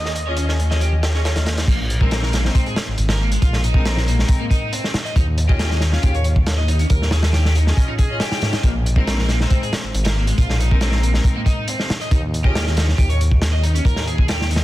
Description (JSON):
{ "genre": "breakbeat, breaks", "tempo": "138 BPM", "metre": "4/4", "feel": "straight", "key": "Bb dorian", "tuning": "A4 = 441 Hz", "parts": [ { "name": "dark detuned saw bass", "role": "bass", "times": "0.0-14.6 s", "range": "Ab1 to Ab2", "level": "-18 LUFS", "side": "equal", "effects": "none" }, { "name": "crunchy breakbeat drum kit", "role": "drums", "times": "0.1-14.6 s", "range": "crash cymbal, hi-hat, kick drum, snare drum", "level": "-19 LUFS", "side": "equal", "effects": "high-pass filter on kick, high-pass filter on hats, high-pass filter on cymbals, high-pass filter on snare, high-pass filter on room" }, { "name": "crunchy overdriven guitar", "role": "riff", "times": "0.3-14.6 s", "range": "Ab3 to Eb5", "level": "-27 LUFS", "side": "equal", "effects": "tube saturation, tape echo" }, { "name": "clear studio string section", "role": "stabs", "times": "0.3-14.6 s", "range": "Ab3 to G5", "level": "-29 LUFS", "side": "left 2 dB", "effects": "tape echo" }, { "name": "congas", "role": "percussion", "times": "0.6-1.5 s", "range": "none", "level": "-32 LUFS", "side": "right 1 dB", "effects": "none" } ], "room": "little or no reverb", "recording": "dense, heavily limited modern master, vinyl crackle", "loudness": "-16 LUFS", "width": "side -16 dB against mid", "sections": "0.0-1.7 A section; 1.7-14.6 B section", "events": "drop 1.7-14.6", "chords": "0.0 Eb9sus4; 1.7 Bb9sus4; 4.9 Eb9sus4; 8.6 Bb9sus4; 11.9 Ebsus4" }